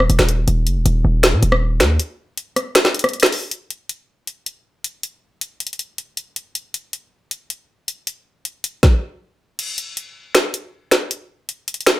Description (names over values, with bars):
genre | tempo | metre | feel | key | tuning
hip hop, trap | 158 BPM | 4/4 | half-time | Eb minor | A4 = 440 Hz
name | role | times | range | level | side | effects
hard-hitting 808-style bass | bass | 0.0-2.0 s | Eb1 to Bb2 | -16 LUFS | equal | none
trap drum kit | drums | 0.0-12.0 s | crash cymbal, finger snaps, hi-hat, kick drum, rim click, snare drum | -16 LUFS | equal | none
room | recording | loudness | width
light reverb | none | -17 LUFS | side -17 dB against mid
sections
0.0-3.5 A section; 3.5-9.6 B section; 9.6-12.0 C section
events
break 2.0-3.5; kick muted 9.6-12.0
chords
none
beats
0.10 | 0.48 0.86 1.24 1.61 | 2.00 2.38 2.75 3.13 | 3.51 3.89 4.27 4.65 | 5.03 5.41 5.79 6.17 | 6.55 6.93 7.31 7.69 | 8.07 8.45 8.83 9.21 | 9.59 9.97 10.35 10.73 | 11.11 11.49 11.87